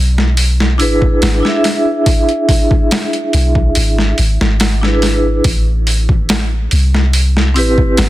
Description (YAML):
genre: trip hop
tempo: 71 BPM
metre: 4/4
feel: straight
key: unclear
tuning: A4 = 442 Hz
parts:
  - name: soft 808-style bass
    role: bass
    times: 0.0-8.1 s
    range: G1 to C2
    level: -13 LUFS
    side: equal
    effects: none
  - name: boom bap sampler-style drum kit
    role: drums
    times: 0.2-8.1 s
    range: hi-hat, kick drum, snare drum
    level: -15 LUFS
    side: equal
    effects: overdrive
  - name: vibraphone with medium hard mallets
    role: accompaniment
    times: 0.8-8.1 s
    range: C4 to E5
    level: -15 LUFS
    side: equal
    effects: tremolo, tape echo
room: digital ambience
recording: dense, heavily limited modern master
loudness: -10 LUFS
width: side -16 dB against mid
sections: 0.0-8.1 A section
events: none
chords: 0.0 E7/G#; 5.4 Am7